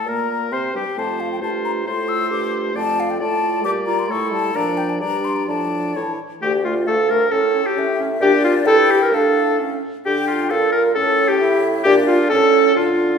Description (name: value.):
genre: quick classical-period movement for wind quintet.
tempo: 133 BPM.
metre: 2/4.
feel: straight.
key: D minor.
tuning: A4 = 440 Hz.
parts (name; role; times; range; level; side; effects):
mellow hollow concert flute; melody; 0.0-13.2 s; C#5 to E6; -24 LUFS; left 7 dB; none.
warm oboe; second line; 0.0-13.2 s; F4 to D5; -22 LUFS; left 3 dB; none.
clear clarinet; accompaniment; 0.0-13.2 s; A3 to C5; -25 LUFS; right 4 dB; none.
mellow French horn; accompaniment; 0.0-13.2 s; E3 to Bb4; -20 LUFS; right 1 dB; none.
warm bassoon; bass; 0.0-13.2 s; D2 to D3; -25 LUFS; right 2 dB; none.
room: wet recital hall reverb, RT60 1.5 s.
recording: recorded in a church or concert hall.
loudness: -16 LUFS.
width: side -6 dB against mid.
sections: 0.0-6.4 A section; 6.4-13.2 B section.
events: none.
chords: 0.1 C5/Bb; 1.0 F; 1.9 F/A; 2.8 Dm/F; 3.7 Gm/Bb; 4.1 A; 4.6 Bb; 5.0 Gm; 5.5 Dm/A; 6.0 A; 6.4 Dm; 7.3 A; 8.2 Bb; 8.7 Gm69; 9.1 Dm/A; 9.6 A; 10.1 Dm; 11.0 A; 11.9 Bb; 12.3 A.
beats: | 0.07 0.52 | 0.97 1.41 | 1.85 2.30 | 2.75 3.20 | 3.65 4.10 | 4.56 5.02 | 5.49 5.96 | 6.43 6.88 | 7.33 7.78 | 8.22 8.67 | 9.14 9.60 | 10.06 10.52 | 10.96 11.41 | 11.86 12.31 | 12.77.